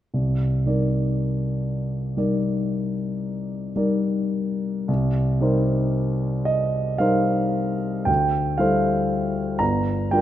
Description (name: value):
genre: classical, impressionist solo piano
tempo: 34-40 BPM (dotted quarters)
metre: 9/8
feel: rubato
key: C minor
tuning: A4 = 440 Hz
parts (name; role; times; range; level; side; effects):
- warm concert grand piano; solo; 0.1-10.2 s; G1 to Bb5; -20 LUFS; equal; none
room: moderate scoring stage reverb, RT60 1.9 s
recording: none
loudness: -20 LUFS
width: side -12 dB against mid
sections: 0.1-4.9 A section; 4.9-10.2 B section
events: none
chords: 0.1 Cm9; 4.9 Cm7; 8.1 Dm11; 9.6 Gm7